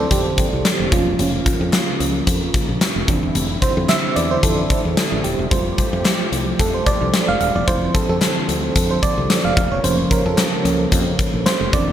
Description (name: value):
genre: 1980s-style pop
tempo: 111 BPM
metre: 4/4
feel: swing 55% on 16ths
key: unclear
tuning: A4 = 440 Hz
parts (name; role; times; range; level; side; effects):
- FM electric piano with tremolo; accompaniment; 0.0-11.9 s; E3 to F5; -21 LUFS; right 3 dB; none
- brassy analog pad; sustained chords; 0.0-11.9 s; Db3 to G4; -26 LUFS; left 1 dB; chorus
- woody fretless electric bass; bass; 0.0-11.9 s; Eb1 to F2; -23 LUFS; left 1 dB; none
- huge arena drum kit; drums; 0.1-11.9 s; hi-hat, kick drum, snare drum; -19 LUFS; left 1 dB; gated reverb
- group handclap; percussion; 0.7-11.6 s; none; -33 LUFS; left 4 dB; none
room: moderate plate reverb, RT60 1.8 s, small room ambience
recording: bright 1980s-style digital production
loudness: -16 LUFS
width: side -10 dB against mid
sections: 0.0-11.9 A section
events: FM electric piano solo 0.0-11.9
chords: 0.0 Dm7/F; 0.9 Bbm; 3.1 Cadd9; 7.7 Dm7/F; 9.6 Bbm